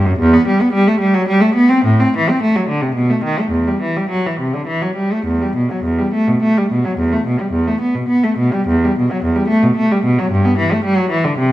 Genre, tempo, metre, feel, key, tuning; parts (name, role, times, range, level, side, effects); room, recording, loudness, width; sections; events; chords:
classical, baroque-style suite movement for unaccompanied cello; 99-112 BPM; 3/4; rubato; E minor; A4 = 440 Hz
rich cello; solo; 0.0-11.5 s; E2 to C4; -13 LUFS; equal
wet recital hall reverb, RT60 1.4 s; -13 LUFS; side -15 dB against mid
0.0-5.3 A section; 5.3-11.5 B section